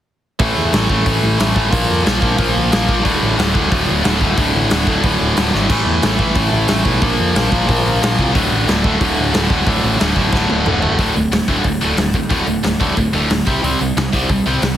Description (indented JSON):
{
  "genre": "punk rock",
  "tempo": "181 BPM",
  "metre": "4/4",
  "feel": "straight",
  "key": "unclear",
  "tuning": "A4 = 440 Hz",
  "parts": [
    { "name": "tight distorted guitar", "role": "riff", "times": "0.4-14.8 s", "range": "D2 to C4", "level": "-16 LUFS", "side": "equal", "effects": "distortion" },
    { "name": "growling picked electric bass", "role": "bass", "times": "0.4-14.8 s", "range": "D1 to F2", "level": "-20 LUFS", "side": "equal", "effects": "overdrive" },
    { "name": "big rock drum kit", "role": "drums", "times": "0.4-14.7 s", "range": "crash cymbal, hi-hat, kick drum, snare drum, toms", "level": "-19 LUFS", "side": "equal", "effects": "none" }
  ],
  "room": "light reverb",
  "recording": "heavily compressed radio sound, multiband compression",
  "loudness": "-13 LUFS",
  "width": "side -11 dB against mid",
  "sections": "0.4-11.0 A section; 11.0-14.8 B section",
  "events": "drum fill 5.5, 10.3-11.0",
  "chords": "0.4 A5; 1.7 Bb5; 3.0 D5; 5.7 A5; 7.0 Bb5; 8.3 D5; 13.5 C5"
}